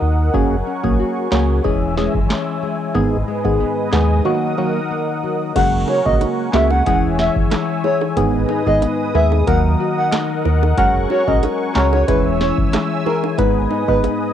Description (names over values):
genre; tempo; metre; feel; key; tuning
dancehall; 92 BPM; 4/4; straight; G# minor; A4 = 439 Hz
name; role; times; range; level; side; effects
warm analog pad; sustained chords; 0.0-14.3 s; A#4 to E6; -25 LUFS; right 1 dB; chorus, sidechain pumping, cassette tape
nylon-string guitar; arpeggios; 0.0-14.3 s; G#2 to B4; -24 LUFS; left 8 dB; cassette tape
sub bass with octave; bass; 0.0-14.0 s; E1 to D#2; -19 LUFS; right 1 dB; none
percussive organ stab; accompaniment; 0.3-14.3 s; C#3 to C#5; -20 LUFS; right 1 dB; chorus, phaser, cassette tape
booming analog drum machine; drums; 0.3-14.2 s; crash cymbal, handclaps, hi-hat, kick drum, rim click, snare drum; -21 LUFS; right 1 dB; cassette tape
breathy flute-like synth lead; melody; 5.6-14.0 s; A#4 to F#5; -20 LUFS; equal; chorus, phaser, cassette tape, tape echo
bongos; percussion; 5.9-14.2 s; none; -27 LUFS; right 13 dB; none
room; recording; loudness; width
light reverb, digital ambience; home recording on cassette; -15 LUFS; side -10 dB against mid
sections
0.0-5.6 A section; 5.6-14.3 B section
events
break 4.3-5.6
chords
0.3 F#add9; 1.6 C#m/E; 3.0 G#m; 4.3 D#m; 5.6 F#add9; 6.9 C#m/E; 8.2 G#m; 9.5 D#m; 10.8 F#add9; 12.1 C#m/E; 13.4 G#m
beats
| 0.34 0.99 1.65 2.30 | 2.95 3.60 4.26 4.91 | 5.56 6.21 6.87 7.52 | 8.17 8.82 9.47 10.12 | 10.78 11.43 12.08 12.73 | 13.39 14.04